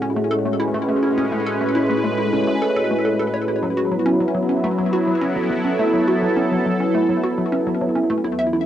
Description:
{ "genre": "ambient, sequencer-driven space music", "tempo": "104 BPM", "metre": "4/4", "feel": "straight", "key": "unclear", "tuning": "A4 = 440 Hz", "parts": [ { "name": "sweeping resonant pad", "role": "sustained chords", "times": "0.0-8.7 s", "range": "E2 to B4", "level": "-19 LUFS", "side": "equal", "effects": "chorus, cassette tape" }, { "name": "hollow square pluck", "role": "riff", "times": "0.0-8.6 s", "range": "F#3 to E5", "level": "-23 LUFS", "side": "left 1 dB", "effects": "lush chorus, cassette tape, ping-pong delay" } ], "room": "wet booth ambience, RT60 0.2 s", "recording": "home recording on cassette", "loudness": "-17 LUFS", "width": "side -11 dB against mid", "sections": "0.0-8.7 A section", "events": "none", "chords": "0.0 Aadd9; 3.6 F#m" }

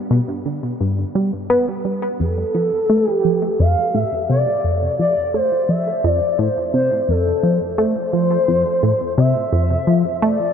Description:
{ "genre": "ambient, sequencer-driven space music", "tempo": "86 BPM", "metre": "4/4", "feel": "straight", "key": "F lydian", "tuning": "A4 = 440 Hz", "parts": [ { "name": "tight sequenced synth", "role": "riff", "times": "0.1-10.4 s", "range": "F2 to B3", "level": "-18 LUFS", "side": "equal", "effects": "chorus, tape echo" }, { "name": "expressive synth lead", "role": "melody", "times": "2.2-10.5 s", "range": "A4 to F5", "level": "-18 LUFS", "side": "left 1 dB", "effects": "lush chorus, tape echo" } ], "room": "wet huge ambient reverb, RT60 9.7 s", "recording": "nothing above 10.4 kHz", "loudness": "-16 LUFS", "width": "side -7 dB against mid", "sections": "0.0-10.5 A section", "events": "none", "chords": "0.0 G; 2.2 F" }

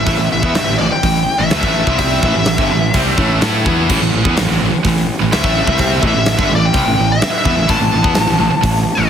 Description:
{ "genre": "hard rock", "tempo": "126 BPM", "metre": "4/4", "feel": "straight", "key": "A minor", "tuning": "A4 = 440 Hz", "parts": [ { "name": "biting lead guitar", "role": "melody", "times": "0.0-9.1 s", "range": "D5 to A5", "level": "-17 LUFS", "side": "left 2 dB", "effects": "overdrive, digital delay" }, { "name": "high-gain distorted guitar", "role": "riff", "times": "0.0-9.1 s", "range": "G2 to A4", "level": "-21 LUFS", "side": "left 11 dB", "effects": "distortion" }, { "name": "scooped high-gain guitar", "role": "riff", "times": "0.0-9.1 s", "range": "G2 to A4", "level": "-18 LUFS", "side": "right 8 dB", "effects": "distortion" }, { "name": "fuzz fingered electric bass", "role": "bass", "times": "0.0-9.1 s", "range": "G1 to A2", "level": "-19 LUFS", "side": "equal", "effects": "overdrive" }, { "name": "huge arena drum kit", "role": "drums", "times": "0.1-8.8 s", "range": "crash cymbal, hi-hat, kick drum, snare drum", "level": "-18 LUFS", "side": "equal", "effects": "none" } ], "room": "light reverb, small room ambience", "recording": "heavily compressed radio sound", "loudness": "-12 LUFS", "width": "side -8 dB against mid", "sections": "0.0-9.1 A section", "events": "lead electric guitar solo 0.0-9.1", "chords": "0.0 Am" }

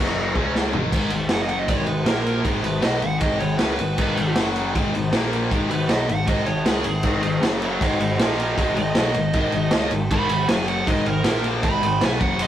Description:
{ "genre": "hard rock", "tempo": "157 BPM", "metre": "4/4", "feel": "straight", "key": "G# minor", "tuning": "A4 = 439 Hz", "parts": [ { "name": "cranked stack guitar", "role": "riff", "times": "0.0-12.5 s", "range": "F#2 to C#4", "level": "-25 LUFS", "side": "left 4 dB", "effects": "overdrive" }, { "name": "distorted electric guitar", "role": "riff", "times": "0.0-12.5 s", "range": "F#2 to C#4", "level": "-29 LUFS", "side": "right 6 dB", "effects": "overdrive" }, { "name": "picked electric bass", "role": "bass", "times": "0.0-12.5 s", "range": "F#1 to C#2", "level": "-29 LUFS", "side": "equal", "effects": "none" }, { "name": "raw garage drum kit", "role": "drums", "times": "0.4-12.5 s", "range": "crash cymbal, kick drum, ride cymbal, snare drum, toms", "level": "-22 LUFS", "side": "equal", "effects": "none" }, { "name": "high-gain lead guitar", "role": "melody", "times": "1.3-12.5 s", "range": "F#4 to B5", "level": "-26 LUFS", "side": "right 3 dB", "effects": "distortion" } ], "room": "moderate studio ambience, RT60 0.5 s", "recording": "rough rehearsal-room recording", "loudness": "-19 LUFS", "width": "side -11 dB against mid", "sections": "0.9-12.5 A section", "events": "drum fill 0.6-0.9; lead electric guitar solo 0.9-12.5", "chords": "0.4 C#5; 0.7 G#5; 1.3 F#5; 1.7 G#m; 2.1 A#5; 2.5 G#m; 4.4 F#5; 4.8 G#5; 5.1 A#5; 5.5 G#m; 7.4 F#5; 7.8 G#5; 8.2 A#5; 8.6 G#m; 10.5 F#5; 10.9 G#5; 11.3 A#5; 11.6 G#m" }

